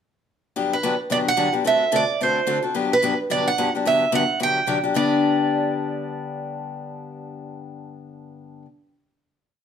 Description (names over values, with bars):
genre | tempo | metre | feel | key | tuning
jazz | 218 BPM | 4/4 | swing 58% on 8ths | G major | A4 = 438 Hz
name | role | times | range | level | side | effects
picked steel-string acoustic guitar | accompaniment | 0.6-8.7 s | G2 to A4 | -23 LUFS | left 5 dB | none
picked steel-string acoustic guitar | melody | 0.7-8.6 s | B4 to G5 | -21 LUFS | right 5 dB | none
room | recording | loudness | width
wet club reverb, RT60 0.8 s | none | -19 LUFS | side -8 dB against mid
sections
0.6-4.9 A section; 4.9-7.2 final chord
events
none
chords
0.6 Gmaj7; 1.7 D7; 2.7 Gmaj7; 4.9 G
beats
| 0.56 0.83 1.10 1.38 | 1.65 1.93 2.20 2.47 | 2.75 3.02 3.30 3.57 | 3.85 4.12 4.39 4.67 | 4.95 5.22 5.50 5.77 | 6.05 6.32 6.60 6.88